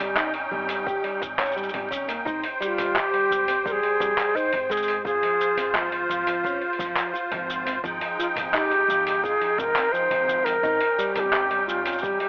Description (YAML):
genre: folktronica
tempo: 86 BPM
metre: 4/4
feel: straight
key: Ab major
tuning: A4 = 440 Hz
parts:
  - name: musette accordion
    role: sustained chords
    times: 0.0-12.3 s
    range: Ab3 to G5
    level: -28 LUFS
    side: equal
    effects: none
  - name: fingerpicked plugged-in steel-string acoustic guitar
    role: arpeggios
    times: 0.0-12.3 s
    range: F3 to Db5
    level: -31 LUFS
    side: equal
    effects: tape echo
  - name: upright bass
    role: bass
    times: 0.0-12.1 s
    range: Ab1 to Eb2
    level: -41 LUFS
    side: equal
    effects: tube saturation
  - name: lo-fi sampler-style drum kit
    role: drums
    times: 0.0-12.3 s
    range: handclaps, hi-hat, shaker, toms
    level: -28 LUFS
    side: equal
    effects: none
  - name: electronic kick drum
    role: drums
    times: 0.9-12.2 s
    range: none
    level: -36 LUFS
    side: equal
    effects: overdrive
  - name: hollow wooden flute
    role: melody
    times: 2.6-12.3 s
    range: F4 to C5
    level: -23 LUFS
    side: equal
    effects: none
room: light reverb, small room ambience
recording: telephone sound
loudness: -21 LUFS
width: side -32 dB against mid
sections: 0.0-12.3 A section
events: none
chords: 0.0 Eb7/Ab; 2.3 Abmaj7; 5.0 Dbmaj7/Ab (rootless); 7.8 Fm7/Ab; 10.6 Eb7/Ab